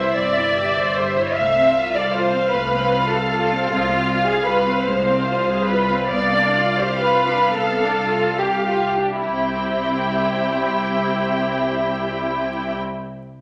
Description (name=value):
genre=classical, slow romantic movement for string orchestra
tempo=32-53 BPM (dotted quarters)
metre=6/8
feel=rubato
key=C major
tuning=A4 = 442 Hz
part: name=clear symphonic violin section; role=melody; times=0.0-12.8 s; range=E5 to G5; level=-28 LUFS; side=equal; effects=none
part: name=rich symphonic violin section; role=second line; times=0.0-12.8 s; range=E4 to E5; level=-22 LUFS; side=equal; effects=none
part: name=bright symphonic viola section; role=accompaniment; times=0.0-12.8 s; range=Ab3 to C5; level=-28 LUFS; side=equal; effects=none
part: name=clear symphonic cello section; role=bass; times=0.2-12.8 s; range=C2 to G2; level=-31 LUFS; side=equal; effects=none
part: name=rich symphonic double bass section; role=bass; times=0.2-12.8 s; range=G1 to C2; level=-33 LUFS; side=equal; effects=none
room=wet large studio reverb, RT60 1.2 s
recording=vinyl crackle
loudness=-20 LUFS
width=mono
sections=0.0-9.2 A section; 9.2-12.4 B section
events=slowing down 2.5-9.2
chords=0.0 C; 1.4 F/C; 3.7 Fm/C; 6.1 G7/C; 9.2 C